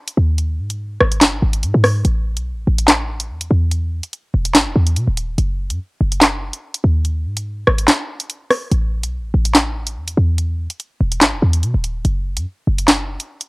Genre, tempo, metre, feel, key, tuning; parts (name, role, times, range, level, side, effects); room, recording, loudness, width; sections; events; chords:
hip hop, drill; 144 BPM; 4/4; half-time; A4 = 440 Hz
drill drum kit; drums; 0.1-13.5 s; handclaps, hi-hat, rim click, snare drum; -14 LUFS; equal
short 808-style bass; bass; 0.2-13.2 s; D#1 to B2; -17 LUFS; equal; tube saturation
little or no reverb; home recording on cassette; -15 LUFS; side -26 dB against mid
0.0-8.7 A section; 8.7-13.5 A section
kick muted 7.9-8.7